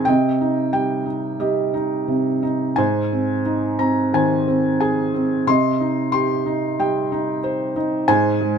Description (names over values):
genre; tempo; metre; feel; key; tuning
classical, lyrical solo piano; 90 BPM; 4/4; rubato; unclear; A4 = 442 Hz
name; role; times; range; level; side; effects
felt-muted upright piano; solo; 0.0-8.6 s; Ab2 to C6; -18 LUFS; right 1 dB; none
room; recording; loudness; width
light reverb; none; -18 LUFS; side -7 dB against mid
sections
0.0-8.6 A section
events
none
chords
0.1 Cm; 2.8 Ab; 5.5 Cm; 8.1 Ab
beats
| 0.08 0.74 1.41 2.09 | 2.79 3.47 4.14 4.81 | 5.48 6.14 6.79 7.44 | 8.08